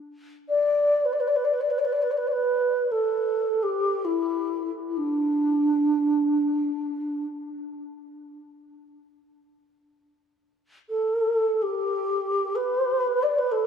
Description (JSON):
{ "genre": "world meditative", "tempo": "free time", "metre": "none", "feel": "none", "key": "unclear", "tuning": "A4 = 441 Hz", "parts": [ { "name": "mellow low xiao", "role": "solo", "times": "0.5-13.7 s", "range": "D4 to D5", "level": "-22 LUFS", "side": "equal", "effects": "analog delay" } ], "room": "wet echo chamber reverb, RT60 1.4 s, studio ambience", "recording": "echo-heavy mix", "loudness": "-22 LUFS", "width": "side -7 dB against mid", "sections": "0.0-13.7 A section", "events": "none", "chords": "none" }